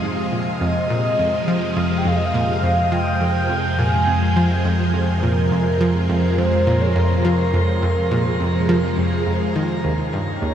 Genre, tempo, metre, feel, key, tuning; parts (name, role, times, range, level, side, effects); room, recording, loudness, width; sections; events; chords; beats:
ambient, sequencer-driven space music; 104 BPM; 4/4; straight; F minor; A4 = 441 Hz
mellow horn-like synth lead; melody; 0.0-10.5 s; Bb4 to Ab5; -23 LUFS; equal; lush chorus, tape echo
phased string machine; sustained chords; 0.0-10.5 s; C3 to Ab4; -22 LUFS; equal; ensemble chorus, phaser
analog pluck; riff; 0.0-10.5 s; Eb2 to F3; -22 LUFS; right 1 dB; chorus, tape echo
analog drone; bass; 0.0-10.5 s; Eb2 to F2; -22 LUFS; equal; chorus
bubbling stepped-filter texture; texture; 0.0-10.5 s; Bb4 to C6; -36 LUFS; right 1 dB
wet shimmer reverb, RT60 8.2 s; -17 LUFS; side -9 dB against mid
0.0-10.5 A section
0.0 Fm; 9.8 Eb7
0.04 | 0.61 1.19 1.77 2.35 | 2.92 3.50 4.08 4.65 | 5.23 5.81 6.38 6.96 | 7.54 8.11 8.69 9.27 | 9.85 10.42